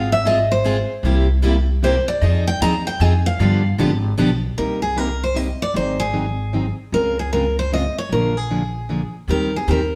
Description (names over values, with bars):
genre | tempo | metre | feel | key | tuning
acoustic string swing (jazz manouche) | 153 BPM | 3/4 | swing 64% on 8ths | C minor | A4 = 440 Hz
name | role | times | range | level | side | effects
picked steel-string acoustic guitar | melody | 0.0-10.0 s | Ab4 to Bb5 | -24 LUFS | equal | none
picked steel-string acoustic guitar | accompaniment | 0.0-9.8 s | C3 to Bb4 | -26 LUFS | equal | none
picked steel-string acoustic guitar | accompaniment | 0.0-4.3, 9.3-9.8 s | C3 to Bb4 | -28 LUFS | equal | none
upright bass | bass | 0.0-10.0 s | Ab1 to G2 | -23 LUFS | equal | none
room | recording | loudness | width
moderate stone room reverb, RT60 1.0 s | band playing live in one room, faint mains hum | -19 LUFS | mono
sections
0.0-4.6 A section; 4.6-10.0 B section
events
steel-string acoustic guitar solo 0.0-4.6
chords
0.0 Ab6; 1.0 C7; 2.2 Fm7; 3.4 G7; 4.6 Cm7; 5.7 Ab7; 6.9 Dbmaj7; 8.1 Bb7; 9.3 Eb6